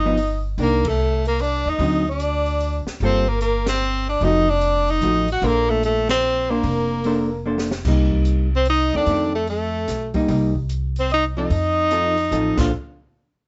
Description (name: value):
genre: jazz, small-group swing and bop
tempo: 148 BPM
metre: 3/4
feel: swing 65% on 8ths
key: unclear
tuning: A4 = 440 Hz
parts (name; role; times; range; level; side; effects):
- bright tenor saxophone; melody; 0.0-12.7 s; A3 to Gb4; -25 LUFS; equal; none
- breathy alto saxophone; second line; 0.0-12.7 s; F3 to Gb5; -27 LUFS; equal; none
- vintage hollow-body jazz guitar; accompaniment; 0.0-12.7 s; D3 to C5; -25 LUFS; equal; none
- upright bass; bass; 0.0-12.7 s; F1 to F2; -26 LUFS; equal; none
- open jazz drum kit; drums; 0.2-12.6 s; crash cymbal, hi-hat, kick drum, ride cymbal, snare drum; -32 LUFS; equal; none
room: light reverb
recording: nothing above 7.9 kHz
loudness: -20 LUFS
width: mono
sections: 0.0-7.9 A section; 7.9-12.7 B section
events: band accent 0.8, 3.6, 6.0; drum fill 7.5-7.9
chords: 0.0 Gaug7; 0.6 Cm9; 1.8 D7b9; 3.0 Gm9; 4.2 F7b9; 5.4 Bbmaj9; 7.9 Cm7; 9.1 F7; 10.3 Cm7; 11.5 F7; 12.5 Bbmaj9; 12.7 N.C.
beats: 0.18 | 0.59 0.99 1.39 | 1.80 2.20 2.60 | 3.01 3.41 3.81 | 4.22 4.62 5.03 | 5.43 5.83 6.24 | 6.64 7.05 7.45 | 7.86 8.26 8.67 | 9.07 9.48 9.88 | 10.29 10.70 11.10 | 11.51 11.91 12.32